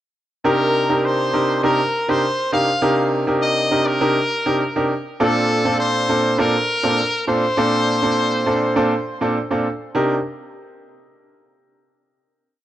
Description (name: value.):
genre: afrobeats.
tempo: 101 BPM.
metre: 4/4.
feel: straight.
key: C dorian.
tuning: A4 = 440 Hz.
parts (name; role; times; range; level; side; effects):
bright baby grand piano; accompaniment; 0.4-10.2 s; Bb2 to Bb4; -18 LUFS; right 1 dB; none.
brilliant trumpet; melody; 0.5-9.3 s; A4 to F5; -21 LUFS; left 1 dB; digital delay.
room: light reverb.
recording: worn, warbling old tape, cassette tape, warbly pitch drift.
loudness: -16 LUFS.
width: side -12 dB against mid.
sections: 0.4-10.0 chorus; 10.0-12.3 final chord.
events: none.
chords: 0.4 Cm7; 5.2 Bbmaj9; 10.0 Cm7.